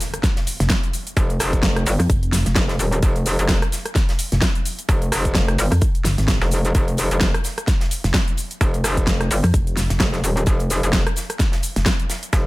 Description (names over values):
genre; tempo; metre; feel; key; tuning
bass house; 129 BPM; 4/4; swing 57% on 16ths; F minor; A4 = 440 Hz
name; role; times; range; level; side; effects
big-room dance drum kit; drums; 0.0-12.4 s; hi-hat, rim click, shaker, snare drum; -24 LUFS; equal; overdrive
tight metal drum kit; drums; 0.0-12.5 s; hi-hat, snare drum; -34 LUFS; right 2 dB; sidechain pumping on hats, high-pass filter on hats, high-pass filter on snare, high-pass filter on room
impact; sound effects; 0.0-1.2 s; none; -38 LUFS; equal; none
electronic kick drum; drums; 0.2-12.4 s; none; -20 LUFS; equal; none
pulsing pluck wobble bass; bass; 0.6-11.8 s; F1 to F2; -18 LUFS; equal; chorus, overdrive, sidechain pumping
metallic wobble bass; bass; 1.2-12.5 s; Eb1 to G1; -20 LUFS; equal; distortion, chorus, sidechain pumping
room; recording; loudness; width
digital ambience; none; -17 LUFS; side -20 dB against mid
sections
0.0-12.5 A section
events
impact 0.0-1.2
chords
none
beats
0.24 0.70 | 1.17 1.63 2.10 2.56 | 3.03 3.49 3.96 4.42 | 4.89 5.35 5.82 6.28 | 6.75 7.21 7.68 8.14 | 8.61 9.07 9.54 10.00 | 10.47 10.93 11.40 11.86 | 12.33